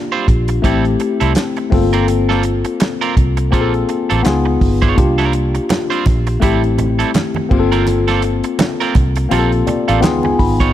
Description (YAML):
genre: lush 1970s-style soul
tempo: 83 BPM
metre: 4/4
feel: swing 58% on 16ths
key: G dorian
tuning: A4 = 440 Hz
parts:
  - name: tine electric piano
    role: accompaniment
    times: 0.0-10.7 s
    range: A3 to B5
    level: -17 LUFS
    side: left 4 dB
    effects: phaser
  - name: electric guitar at the edge of break-up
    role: riff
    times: 0.1-10.7 s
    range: G3 to C#5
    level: -22 LUFS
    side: right 8 dB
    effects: none
  - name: vintage muted fingered electric bass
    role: bass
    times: 0.3-10.7 s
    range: G1 to C#2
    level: -17 LUFS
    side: right 1 dB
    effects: none
  - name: warm soul drum kit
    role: drums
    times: 0.3-10.7 s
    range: crash cymbal, hi-hat, kick drum, snare drum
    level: -17 LUFS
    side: right 1 dB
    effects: none
  - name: group handclap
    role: percussion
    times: 1.4-10.2 s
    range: none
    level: -32 LUFS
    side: left 3 dB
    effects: none
  - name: congas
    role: percussion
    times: 5.0-10.4 s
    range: none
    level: -25 LUFS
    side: right 5 dB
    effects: none
room: small room ambience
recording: none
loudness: -12 LUFS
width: side -12 dB against mid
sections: 0.0-10.7 A section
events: tine electric piano fill 9.3-10.7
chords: 0.0 C7sus4; 0.6 Am7; 1.7 Gm11; 4.3 C#9; 5.0 C7sus4; 6.4 Am7; 7.5 Gm11; 10.0 C#9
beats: 0.64 1.36 | 2.09 2.81 3.53 4.25 | 4.98 5.70 6.42 7.14 | 7.87 8.59 9.31 10.04